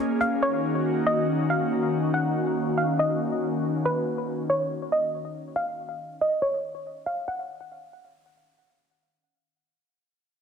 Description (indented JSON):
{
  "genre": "hip hop",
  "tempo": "140 BPM",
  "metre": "4/4",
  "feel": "half-time",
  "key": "Eb minor",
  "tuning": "A4 = 440 Hz",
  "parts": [
    { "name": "hollow square pluck", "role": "melody", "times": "0.0-8.5 s", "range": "Cb5 to Gb5", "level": "-27 LUFS", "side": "right 1 dB", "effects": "chorus, low-pass filter, ping-pong delay" },
    { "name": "airy breathy pad", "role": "sustained chords", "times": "0.0-3.8 s", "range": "Eb3 to G#4", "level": "-26 LUFS", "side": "left 1 dB", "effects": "chorus, low-pass filter" }
  ],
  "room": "moderate digital room reverb, RT60 1.0 s, small room ambience",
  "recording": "heavily compressed radio sound, multiband compression",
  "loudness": "-24 LUFS",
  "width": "side -6 dB against mid",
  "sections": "0.0-7.3 A section; 7.3-10.4 B section",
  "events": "filter sweep 0.0-7.3",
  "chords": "0.4 Ebm7; 3.9 N.C."
}